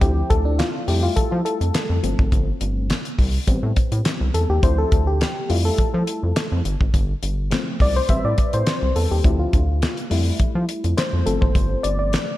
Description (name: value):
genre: early-eighties boogie funk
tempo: 104 BPM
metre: 4/4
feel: straight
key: D dorian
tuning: A4 = 440 Hz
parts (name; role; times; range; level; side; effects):
- FM electric piano with tremolo; accompaniment; 0.0-12.4 s; F3 to E5; -24 LUFS; left 2 dB; none
- rubbery square bass; bass; 0.0-12.1 s; G1 to F3; -21 LUFS; equal; none
- damped 70s drum kit; drums; 0.0-12.3 s; handclaps, hi-hat, kick drum, snare drum; -21 LUFS; equal; none
room: light reverb, studio ambience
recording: none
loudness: -18 LUFS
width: side -15 dB against mid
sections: 0.0-12.4 A section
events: FM electric piano solo 0.0-12.4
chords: 0.0 Dm7; 0.9 Fmaj7; 2.0 G9sus4; 3.5 Am9; 4.6 Dm7; 5.5 Fmaj7; 6.7 G9sus4; 8.1 Am9; 9.2 Dm7; 10.1 Fmaj7; 11.3 G9sus4